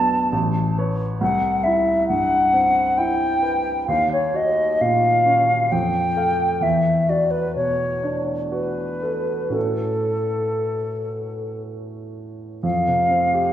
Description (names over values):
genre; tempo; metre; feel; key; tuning
classical, impressionist duo for flute and grand piano; 56-68 BPM; 3/4; rubato; A lydian; A4 = 442 Hz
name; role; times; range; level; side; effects
mellow hollow silver concert flute; melody; 0.0-13.5 s; A4 to A5; -20 LUFS; left 1 dB; none
warm baby grand piano; accompaniment; 0.0-13.5 s; A1 to F5; -24 LUFS; right 1 dB; none
room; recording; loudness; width
wet recital hall reverb, RT60 1.4 s; recorded in a church or concert hall; -18 LUFS; side -11 dB against mid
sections
0.0-12.6 A section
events
none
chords
0.3 Aadd9; 1.2 Cmaj7; 3.9 D#m9; 5.7 Fadd9; 6.6 E9sus4; 9.6 A69; 12.6 Fsus2